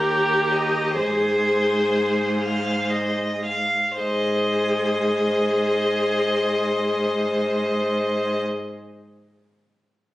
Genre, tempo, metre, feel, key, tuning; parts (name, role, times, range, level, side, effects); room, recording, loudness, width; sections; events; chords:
classical, slow romantic movement for string quartet; 36-49 BPM (dotted quarters); 6/8; rubato; Ab major; A4 = 440 Hz
rich violin; melody; 0.0-8.4 s; Bb4 to Eb5; -26 LUFS; left 2 dB
rich violin; second line; 0.0-8.4 s; Bb4 to F5; -26 LUFS; equal
rich viola; accompaniment; 0.0-8.4 s; G4 to Ab4; -23 LUFS; equal
clear cello; bass; 0.0-8.4 s; Eb2 to Ab2; -28 LUFS; right 1 dB
moderate recital hall reverb, RT60 1.4 s; recorded on a phone in the room, studio reverb, compression; -20 LUFS; side -16 dB against mid
0.0-4.0 A section; 4.0-10.1 B section
slowing down 0.0-4.0
0.0 Eb; 1.0 Ab